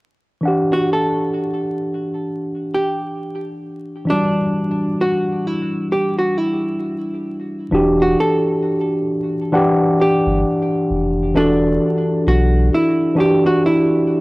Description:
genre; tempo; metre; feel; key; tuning
hip hop; 66 BPM; 4/4; swing 58% on 16ths; E minor; A4 = 439 Hz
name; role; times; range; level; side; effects
mellow tine electric piano; accompaniment; 0.4-14.2 s; E3 to F#5; -18 LUFS; equal; overdrive, cassette tape, low-pass filter
archtop guitar, miked and amplified; melody; 0.7-14.2 s; D4 to A4; -20 LUFS; right 1 dB; low-pass filter, tape echo
warm sub bass; bass; 7.7-12.7 s; E1 to B1; -19 LUFS; equal; tube saturation
room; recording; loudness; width
moderate spring reverb, RT60 2.2 s; home recording on cassette, vinyl crackle; -15 LUFS; side -21 dB against mid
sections
0.4-7.7 A section; 7.7-14.2 B section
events
none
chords
0.4 Em9

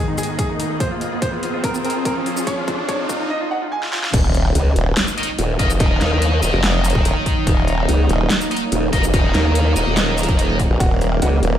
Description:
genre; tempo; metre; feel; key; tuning
heavy wobble dubstep; 144 BPM; 4/4; half-time; Eb minor; A4 = 440 Hz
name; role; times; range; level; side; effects
bright grand piano; melody; 0.0-4.1, 10.8-11.6 s; Bb3 to Ab5; -25 LUFS; right 1 dB; vintage 12-bit sampler grit, low-pass filter, ping-pong delay
evolving wavetable pad; sustained chords; 0.0-11.6 s; F2 to Eb5; -26 LUFS; right 2 dB; ensemble chorus, built-in reverb, sidechain pumping
riser and impact; sound effects; 0.0-5.8 s; none; -25 LUFS; right 1 dB; none
dubstep drum kit; drums; 0.2-11.5 s; crash cymbal, hi-hat, ride cymbal, shaker, snare drum; -24 LUFS; equal; high-pass filter on hats, high-pass filter on perc, high-pass filter on snare, high-pass filter on cymbals
electronic kick drum; drums; 0.4-10.9 s; none; -20 LUFS; equal; none
formant-sweep wobble bass; bass; 4.1-11.6 s; Eb1 to Bb1; -18 LUFS; equal; chorus, overdrive
formant-sweep wobble bass; bass; 4.6-11.4 s; Eb1 to Eb2; -17 LUFS; equal; chorus, overdrive
distorted electric guitar; stabs; 5.2-10.6 s; Eb4 to Eb5; -23 LUFS; left 2 dB; overdrive, ping-pong delay
room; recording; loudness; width
light reverb; played on a big sound system in a bare room, stone room reverb, high-pass filter; -16 LUFS; side -10 dB against mid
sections
0.0-4.1 A section; 4.1-11.6 B section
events
build-up 0.0-4.1; riser 0.0-3.3; filter sweep 0.0-4.1; drum fill 0.8-3.3, 3.8-4.1; drop 4.1-11.6; impact 4.1-5.8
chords
0.0 Abm; 0.8 Fm; 2.5 Bbm/F; 4.1 Ebm

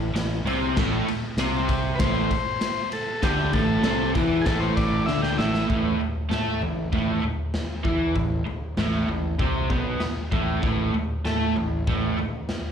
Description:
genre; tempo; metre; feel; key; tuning
garage rock duo or trio; 97 BPM; 4/4; straight; A minor; A4 = 440 Hz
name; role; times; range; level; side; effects
raw garage guitar; riff; 0.0-12.2 s; A2 to A4; -25 LUFS; right 1 dB; overdrive, slapback echo
fuzz fingered electric bass; bass; 0.0-12.2 s; A1 to A2; -29 LUFS; equal; overdrive
raw garage drum kit; drums; 0.2-12.6 s; crash cymbal, kick drum, ride cymbal, snare drum, toms; -27 LUFS; equal; none
overdriven combo organ; melody; 2.0-5.7 s; G4 to G5; -28 LUFS; left 2 dB; slapback echo
room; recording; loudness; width
small room ambience; live gig heard through the venue's PA, club reverb; -22 LUFS; side -8 dB against mid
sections
0.0-5.7 A section; 5.7-12.7 B section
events
transistor combo organ solo 0.0-5.7; drum fill 5.1-5.7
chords
0.0 Am

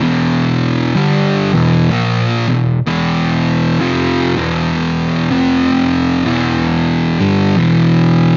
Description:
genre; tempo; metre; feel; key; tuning
metal; 64 BPM; 4/4; swing 60% on 8ths; unclear; A4 = 440 Hz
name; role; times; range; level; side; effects
fuzz guitar; solo; 0.0-8.4 s; E2 to A#3; -14 LUFS; equal; distortion
room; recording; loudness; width
moderate large studio reverb, RT60 0.8 s; nothing above 7.5 kHz; -14 LUFS; mono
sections
0.0-8.4 A section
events
none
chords
0.0 Em; 5.2 F5; 6.2 Em

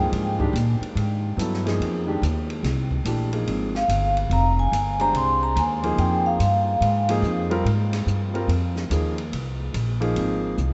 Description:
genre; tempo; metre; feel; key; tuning
modal jazz; 144 BPM; 4/4; swing 65% on 8ths; F dorian; A4 = 439 Hz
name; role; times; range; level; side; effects
vibraphone with medium mallets; melody; 0.0-0.4, 3.8-7.1 s; F5 to C6; -27 LUFS; equal; none
warm concert grand piano; accompaniment; 0.0-10.6 s; Eb3 to C5; -30 LUFS; equal; none
upright bass; bass; 0.0-10.7 s; F1 to Bb2; -26 LUFS; equal; none
open jazz drum kit; drums; 0.1-10.7 s; hi-hat, kick drum, ride cymbal, snare drum; -37 LUFS; equal; none
room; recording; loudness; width
wet cathedral reverb, RT60 6.1 s; in a vast, echoing space, nothing above 8.0 kHz; -23 LUFS; mono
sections
0.0-10.7 A section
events
drum fill 10.6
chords
0.0 Fm11

